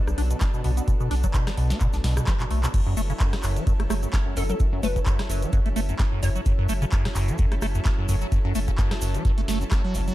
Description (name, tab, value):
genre	acid house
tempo	129 BPM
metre	4/4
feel	swing 55% on 16ths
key	F# minor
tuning	A4 = 441 Hz
part	lush unison pad	sustained chords	0.0-10.1 s	F#3 to A4	-35 LUFS	equal	chorus, sidechain pumping
part	liquid acid bass	riff	0.1-10.1 s	F#1 to D4	-28 LUFS	equal	phaser, sidechain pumping
part	saturated sub bass	bass	0.1-10.1 s	F#1 to B1	-26 LUFS	equal	sidechain pumping
part	booming analog drum machine	drums	0.1-10.1 s	crash cymbal, handclaps, hi-hat, rim click, snare drum	-33 LUFS	equal	none
part	cabasa	percussion	0.1-10.1 s	none	-41 LUFS	right 5 dB	none
part	electronic kick drum	drums	0.4-9.8 s	none	-23 LUFS	equal	none
part	hollow square pluck	melody	4.4-6.9 s	A4 to C#5	-34 LUFS	left 2 dB	ensemble chorus, digital delay
room	digital ambience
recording	dark, warm production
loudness	-21 LUFS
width	side -15 dB against mid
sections	0.0-2.7 A section; 2.7-10.1 B section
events	filter sweep on acid bass 0.0-2.7; drum fill 2.4-2.7; drop 2.7-10.1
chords	0.0 Bm7; 2.7 F#m7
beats	0.41 | 0.88 1.34 1.81 2.27 | 2.74 3.20 3.67 4.13 | 4.60 5.07 5.53 6.00 | 6.46 6.92 7.39 7.86 | 8.32 8.79 9.25 9.72